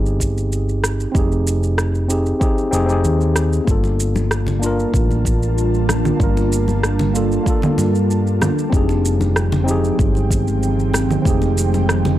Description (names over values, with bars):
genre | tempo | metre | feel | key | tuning
sunset chillout | 95 BPM | 4/4 | straight | unclear | A4 = 443 Hz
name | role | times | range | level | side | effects
tine electric piano | accompaniment | 0.0-12.2 s | Bb3 to Bb4 | -21 LUFS | moving between left 5 dB and right 4 dB | auto-pan, tape echo
hollow-body short-scale fingered electric bass | bass | 0.0-12.2 s | F1 to G2 | -19 LUFS | equal | tube saturation
electronic shaker, rim click and congas | drums | 0.1-12.2 s | none | -23 LUFS | right 1 dB | overdrive
electronic kick drum | drums | 0.2-11.4 s | none | -19 LUFS | equal | none
ethereal airy pad | sustained chords | 4.3-12.2 s | Eb3 to A5 | -23 LUFS | right 1 dB | ensemble chorus, built-in reverb
congas | percussion | 3.8-12.2 s | none | -27 LUFS | left 2 dB | none
room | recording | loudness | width
digital ambience | dry, gritty hardware recording | -15 LUFS | side -13 dB against mid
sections
0.0-12.2 A section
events
none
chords
0.0 Fm9; 3.7 Gm9; 8.7 Fm9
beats
0.52 | 1.15 1.78 2.41 3.04 | 3.67 4.31 4.94 5.57 | 6.20 6.83 7.46 8.10 | 8.73 9.36 9.99 10.62 | 11.25 11.89